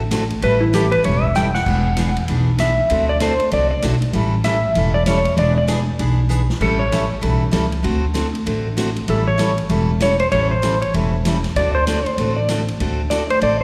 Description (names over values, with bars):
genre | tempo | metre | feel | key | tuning
country, western swing | 194 BPM | 4/4 | swing 62% on 8ths | A mixolydian | A4 = 441 Hz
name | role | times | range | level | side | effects
upright bass | bass | 0.0-13.6 s | E1 to D2 | -22 LUFS | equal | none
picked steel-string acoustic guitar | accompaniment | 0.1-13.6 s | D3 to A4 | -24 LUFS | equal | plate reverb, slapback echo
swinging big-band drum kit | drums | 0.1-13.5 s | crash cymbal, hi-hat, kick drum, ride cymbal, snare drum | -31 LUFS | equal | slapback echo
clean lap steel guitar | melody | 0.4-7.1, 9.1-13.6 s | E4 to G5 | -21 LUFS | equal | plate reverb, slapback echo
room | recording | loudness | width
moderate club reverb, RT60 0.7 s | live gig heard through the venue's PA, recital hall reverb | -18 LUFS | mono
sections
0.0-6.6 A section; 6.6-13.6 A section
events
electric slide guitar solo 0.0-6.6, 6.6-13.6; drum fill 1.4-1.7, 6.3-6.6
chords
0.4 A7; 1.7 E9; 2.9 D7; 4.1 A7; 5.4 E7; 6.6 A9; 7.8 D7; 9.1 A7; 11.6 D7